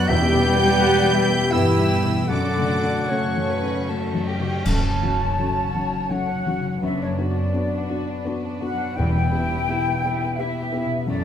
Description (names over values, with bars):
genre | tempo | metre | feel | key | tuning
cinematic, emotional film score for orchestra | 75-88 BPM | 3/4 | rubato | E dorian | A4 = 439 Hz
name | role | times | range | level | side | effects
clear studio violin section | melody | 0.0-11.2 s | A4 to G6 | -31 LUFS | right 1 dB | none
clear oboe | second line | 0.0-4.3 s | C#5 to G5 | -30 LUFS | right 2 dB | none
large flute ensemble | second line | 0.0-11.2 s | C#5 to A5 | -27 LUFS | left 2 dB | none
warm clarinet | second line | 0.0-4.3 s | E5 to G5 | -29 LUFS | equal | none
warm studio violin section | second line | 0.0-11.2 s | G3 to B4 | -31 LUFS | left 2 dB | none
dark baby grand piano | accompaniment | 0.0-11.2 s | E2 to B4 | -27 LUFS | left 2 dB | none
dark studio viola section | accompaniment | 0.0-11.2 s | C#3 to G4 | -29 LUFS | right 1 dB | none
dark French horn section | sustained chords | 0.0-4.3 s | A3 to G4 | -28 LUFS | left 3 dB | none
concert harp | arpeggios | 0.0-11.2 s | E2 to A5 | -29 LUFS | left 5 dB | none
dark studio double bass section | bass | 0.0-11.2 s | E1 to G2 | -28 LUFS | right 2 dB | none
warm studio cello section | bass | 0.0-11.2 s | E2 to G3 | -27 LUFS | right 2 dB | none
cymbal swell, clash cymbals and concert bass drum | percussion | 0.1-6.1 s | none | -30 LUFS | equal | none
timpani | percussion | 0.1-1.1, 9.0-10.0 s | E2 | -27 LUFS | equal | none
room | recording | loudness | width
moderate scoring stage reverb, RT60 1.6 s | close, detailed microphones | -19 LUFS | side -9 dB against mid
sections
0.0-4.7 A section; 4.7-11.2 A section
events
band accent 4.7-5.4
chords
0.1 Em; 2.3 F#m; 6.8 Bm/F#; 9.0 Em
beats
| 0.10 0.80 1.53 | 2.30 3.10 3.88 | 4.65 5.39 6.11 | 6.82 7.54 8.25 | 8.97 9.68 10.39 | 11.08